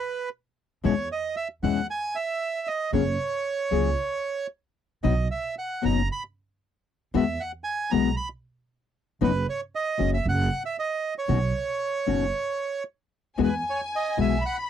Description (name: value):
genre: tango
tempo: 115 BPM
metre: 4/4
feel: rubato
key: B major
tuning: A4 = 441 Hz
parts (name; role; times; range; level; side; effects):
- bandoneon; melody; 0.0-14.6 s; B4 to B5; -28 LUFS; right 4 dB; none
- nylon-string guitar; accompaniment; 0.8-14.3 s; B2 to G#4; -24 LUFS; left 10 dB; none
- upright bass; bass; 0.8-14.4 s; F#1 to E2; -27 LUFS; right 2 dB; none
- rich chamber violin section; second line; 13.4-14.7 s; G#5 to B5; -30 LUFS; left 2 dB; none
room: little or no reverb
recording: dry, close 1970s-style studio recording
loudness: -24 LUFS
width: side -9 dB against mid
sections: 0.0-14.7 A section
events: none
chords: 0.0 N.C.; 0.8 C#m7/E; 2.9 F#add9; 5.0 B; 7.1 Eadd9; 9.2 B/F#; 10.2 D#m/F#; 11.3 Badd9; 13.4 Eadd9